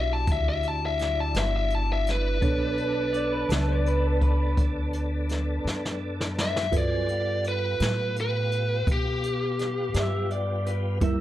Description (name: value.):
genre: slow blues.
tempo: 56 BPM (dotted quarters).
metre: 12/8.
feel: straight.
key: unclear.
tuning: A4 = 440 Hz.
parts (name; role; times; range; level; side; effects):
biting lead guitar; melody; 0.0-10.3 s; G4 to A5; -28 LUFS; left 1 dB; overdrive, plate reverb.
bell-like tine electric piano; accompaniment; 0.0-11.2 s; G3 to D5; -35 LUFS; right 4 dB; medium stereo tremolo, plate reverb.
tonewheel organ; sustained chords; 0.0-11.2 s; F#3 to G#5; -34 LUFS; left 1 dB; slow rotary speaker, chorus vibrato, plate reverb.
upright bass; bass; 0.0-11.2 s; G1 to B2; -28 LUFS; equal; none.
jazz brush drum kit; drums; 0.3-11.2 s; hi-hat, kick drum, snare drum; -28 LUFS; equal; none.
electric guitar through a small old amp; second line; 3.1-11.2 s; A4 to E5; -33 LUFS; equal; plate reverb, analog delay.
room: light reverb.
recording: none.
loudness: -24 LUFS.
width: side -13 dB against mid.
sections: 0.0-11.2 A section.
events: drum fill 5.6-6.7.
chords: 0.0 Em7; 2.4 Bm7; 6.7 G7.